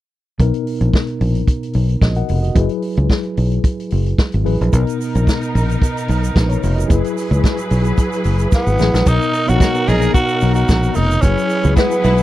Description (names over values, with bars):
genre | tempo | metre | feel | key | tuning
disco | 111 BPM | 4/4 | straight | B major | A4 = 440 Hz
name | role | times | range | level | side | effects
mellow tine electric piano | accompaniment | 0.4-12.2 s | B2 to F#5 | -21 LUFS | left 2 dB | slow stereo tremolo
fingered electric bass | bass | 0.4-12.2 s | E#1 to C#2 | -16 LUFS | equal | none
vintage drum kit | drums | 0.4-12.2 s | crash cymbal, hi-hat, kick drum, snare drum | -15 LUFS | equal | none
clear studio string section | sustained chords | 4.7-12.2 s | F#3 to B4 | -25 LUFS | right 1 dB | none
egg shaker | percussion | 4.7-12.2 s | none | -38 LUFS | right 22 dB | none
raspy tenor saxophone | melody | 8.5-12.2 s | B3 to G#4 | -18 LUFS | equal | none
clear studio string section | second line | 9.6-12.2 s | F#3 to B4 | -22 LUFS | right 1 dB | none
room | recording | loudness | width
little or no reverb | dry, close 1970s-style studio recording | -14 LUFS | side -15 dB against mid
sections
0.4-9.1 A section; 9.1-12.2 B section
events
drum fill 8.5-9.1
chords
0.4 Bmaj7; 2.6 F#9sus4; 4.7 Bmaj7; 6.9 F#9sus4; 9.1 Bmaj7; 11.2 F#9sus4